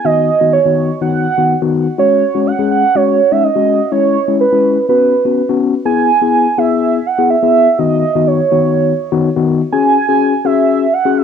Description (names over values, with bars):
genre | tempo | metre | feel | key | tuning
pop | 124 BPM | 4/4 | straight | B major | A4 = 442 Hz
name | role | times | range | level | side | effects
warm velvety synth lead | melody | 0.0-11.2 s | B4 to G#5 | -13 LUFS | right 6 dB | chorus, cassette tape
mellow tine electric piano | accompaniment | 0.0-11.2 s | D#3 to G#4 | -14 LUFS | left 7 dB | cassette tape
room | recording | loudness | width
wet studio reverb, RT60 0.5 s | home recording on cassette | -10 LUFS | side -7 dB against mid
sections
0.0-5.9 A section; 5.9-11.2 B section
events
none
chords
0.0 Badd9/D#; 2.0 F#sus2; 3.9 C#m7; 4.9 F#sus4; 5.9 E; 7.8 Badd9/D#; 9.7 F#sus2